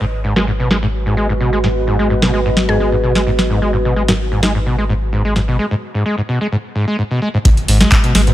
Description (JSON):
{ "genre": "acid house", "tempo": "129 BPM", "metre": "4/4", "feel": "straight", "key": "G# minor", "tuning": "A4 = 443 Hz", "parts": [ { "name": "dark analog pad", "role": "sustained chords", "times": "0.0-8.3 s", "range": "G#3 to B4", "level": "-26 LUFS", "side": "left 2 dB", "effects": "chorus, sidechain pumping" }, { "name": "overdriven acid bass", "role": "riff", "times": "0.0-8.3 s", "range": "G#2 to G#3", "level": "-17 LUFS", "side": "equal", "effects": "distortion, tube saturation, lush chorus, sidechain pumping" }, { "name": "warm sub bass", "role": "bass", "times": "0.0-8.3 s", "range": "G#1", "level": "-19 LUFS", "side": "equal", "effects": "sidechain pumping" }, { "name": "warbly tape-like pad", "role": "texture", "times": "0.0-5.6 s", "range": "F#4 to D#5", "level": "-22 LUFS", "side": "right 2 dB", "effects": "chorus, built-in reverb, phaser, sidechain pumping" }, { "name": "filtered dub chord stab", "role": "stabs", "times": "0.4-4.5 s", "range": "B3 to A#4", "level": "-27 LUFS", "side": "right 1 dB", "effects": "none" }, { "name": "booming analog drum machine", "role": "drums", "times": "0.4-8.3 s", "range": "handclaps, hi-hat, snare drum", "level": "-17 LUFS", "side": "equal", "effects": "low-pass filter on hats, studio ambience, low-pass filter on snare" }, { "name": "mallet-like synth pluck", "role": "melody", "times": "2.7-3.3 s", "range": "G#4", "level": "-25 LUFS", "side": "left 3 dB", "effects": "chorus, dub echo" }, { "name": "electronic kick drum", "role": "drums", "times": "7.5-8.0 s", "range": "none", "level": "-12 LUFS", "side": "equal", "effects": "studio ambience" }, { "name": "impact", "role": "sound effects", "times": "7.5-8.3 s", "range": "none", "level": "-21 LUFS", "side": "equal", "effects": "none" } ], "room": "light reverb, digital ambience", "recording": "none", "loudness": "-13 LUFS", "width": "side -14 dB against mid", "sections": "0.0-7.5 A section", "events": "filter sweep on drum 0.0-7.5; filter sweep on analog synth pad 0.0-7.5; impact 7.5-8.3", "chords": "0.0 G#m7" }